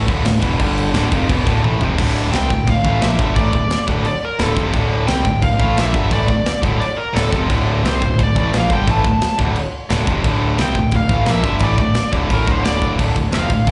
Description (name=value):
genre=heavy metal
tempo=174 BPM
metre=4/4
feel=straight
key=D minor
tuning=A4 = 440 Hz
part: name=heavy high-gain guitar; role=riff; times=0.0-13.7 s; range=D2 to C4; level=-24 LUFS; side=equal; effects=distortion
part: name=tight distorted guitar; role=riff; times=0.0-13.7 s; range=D2 to C4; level=-27 LUFS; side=equal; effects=distortion, slapback echo
part: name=fuzz picked electric bass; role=bass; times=0.0-13.7 s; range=D1 to C2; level=-22 LUFS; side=equal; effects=overdrive
part: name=tight metal drum kit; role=drums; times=0.1-13.7 s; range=crash cymbal, kick drum, snare drum, toms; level=-23 LUFS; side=equal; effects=none
part: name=high-gain lead guitar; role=melody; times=2.4-13.7 s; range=A4 to A5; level=-25 LUFS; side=equal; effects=distortion, slapback echo
room=small room ambience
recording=live gig heard through the venue's PA, club reverb, nothing above 10.6 kHz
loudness=-17 LUFS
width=mono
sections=0.0-2.0 A section; 2.0-13.0 B section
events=drum fill 1.6-2.0, 12.8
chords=0.0 D5; 0.6 G5; 0.9 Dm